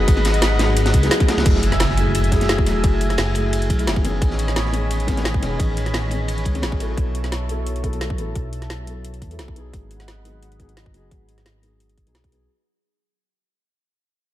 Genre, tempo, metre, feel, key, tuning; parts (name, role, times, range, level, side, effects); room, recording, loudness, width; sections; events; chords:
liquid drum and bass; 174 BPM; 4/4; swing 53% on 16ths; A4 = 440 Hz
dark concert grand piano; melody; 0.0-1.1 s; barely audible
felt-muted upright piano; accompaniment; 0.0-12.5 s; D#3 to A4; -25 LUFS; left 2 dB; digital delay
lush unison pad; sustained chords; 0.0-12.5 s; C#5 to B5; -29 LUFS; equal; chorus, sidechain pumping
dark detuned saw bass; bass; 0.0-12.5 s; E1 to E2; -22 LUFS; equal; tube saturation
crunchy breakbeat drum kit; drums; 0.1-6.9 s; ride cymbal, snare drum; -29 LUFS; equal; high-pass filter on cymbals, high-pass filter on snare, high-pass filter on room
electronic kick drum; drums; 0.1-12.3 s; -19 LUFS; equal
garage drum kit; drums; 0.1-12.4 s; crash cymbal, hi-hat, snare drum; -25 LUFS; equal
impact; sound effects; 1.5-2.8 s; -25 LUFS; equal
light reverb, small room reverb; dark, warm production; -17 LUFS; side -14 dB against mid
0.0-1.5 A section; 1.5-12.5 B section
drop 0.0-1.5; fade-out 1.5-12.5; impact 1.5-2.8; filter sweep on analog synth pad 1.5-12.5
0.0 G#m7; 1.5 Amaj9#11; 7.0 B7sus4; 9.7 G#m7